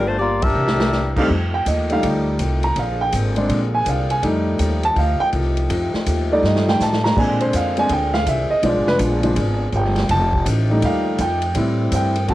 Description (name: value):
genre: jazz, big band swing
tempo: 164 BPM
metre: 4/4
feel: swing 65% on 8ths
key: F mixolydian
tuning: A4 = 440 Hz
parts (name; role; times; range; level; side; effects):
- warm saxophone section; melody; 0.0-1.2 s; A3 to E5; -19 LUFS; left 2 dB; cassette tape
- clear grand piano; accompaniment; 0.0-12.3 s; F3 to Bb5; -19 LUFS; right 1 dB; cassette tape
- picked old ladder-braced acoustic guitar; accompaniment; 0.0-12.3 s; G2 to G4; -30 LUFS; left 4 dB; cassette tape
- upright bass; bass; 0.0-12.3 s; F1 to Bb2; -21 LUFS; equal; none
- swinging big-band drum kit; drums; 0.4-12.3 s; crash cymbal, hi-hat, kick drum, ride cymbal, snare drum; -25 LUFS; equal; cassette tape
- clear trumpet section; stabs; 1.2-1.3 s; Eb4 to F5; -24 LUFS; right 3 dB; cassette tape
- dark trombone section; sustained chords; 1.3-12.3 s; D3 to Ab4; -29 LUFS; left 1 dB; cassette tape
room: light reverb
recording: home recording on cassette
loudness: -16 LUFS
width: side -15 dB against mid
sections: 0.0-1.3 A section; 1.3-12.3 B section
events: drum fill 0.2-0.9, 6.4-7.2; band accent 0.4; grand piano solo 1.3-12.3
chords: 0.0 Gm7; 0.6 C9; 1.3 F9; 2.8 Bb9; 4.2 F9; 7.2 Bb9; 8.6 Bdim7; 10.1 F9; 11.6 Am7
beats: 0.19 0.56 0.92 | 1.29 1.66 2.03 2.39 | 2.76 3.13 3.49 3.86 | 4.23 4.59 4.96 5.33 | 5.69 6.06 6.43 6.79 | 7.16 7.53 7.89 8.26 | 8.62 8.99 9.36 9.72 | 10.09 10.45 10.82 11.19 | 11.55 11.92 12.28